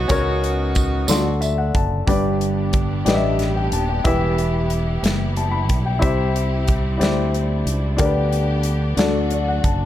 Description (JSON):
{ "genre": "slow gospel", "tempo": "61 BPM (dotted quarters)", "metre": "6/8", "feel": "straight", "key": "G major", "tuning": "A4 = 437 Hz", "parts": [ { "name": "edgy saxophone section", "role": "melody", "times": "0.0-1.4 s", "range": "B3 to F#4", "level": "-26 LUFS", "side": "right 2 dB", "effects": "none" }, { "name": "warm grand piano", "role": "accompaniment", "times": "0.0-9.9 s", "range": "G2 to C6", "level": "-22 LUFS", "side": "left 2 dB", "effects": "none" }, { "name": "fingered electric bass", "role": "bass", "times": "0.0-9.9 s", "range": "Eb1 to D2", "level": "-22 LUFS", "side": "right 1 dB", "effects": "none" }, { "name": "modern studio drum kit", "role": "drums", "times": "0.1-9.8 s", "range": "hi-hat, kick drum, snare drum", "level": "-22 LUFS", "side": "equal", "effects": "none" }, { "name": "tambourine", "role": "percussion", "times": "0.1-1.7 s", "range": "none", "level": "-28 LUFS", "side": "right 8 dB", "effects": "none" }, { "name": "clear studio string section", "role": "sustained chords", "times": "2.1-9.9 s", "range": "F#3 to G4", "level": "-29 LUFS", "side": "right 1 dB", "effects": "none" } ], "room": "small room ambience", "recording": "none", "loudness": "-17 LUFS", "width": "side -12 dB against mid", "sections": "0.0-2.1 A section; 2.1-9.9 B section", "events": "grand piano fill 1.1-2.1, 9.0-9.9", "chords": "0.1 F#/C#; 1.1 D7; 2.1 G; 4.1 Em; 6.0 C; 7.0 D9sus4; 8.0 G/D; 9.0 D", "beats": "| 0.10 1.09 | 2.08 3.07 | 4.05 5.04 | 6.03 7.01 | 8.00 8.98" }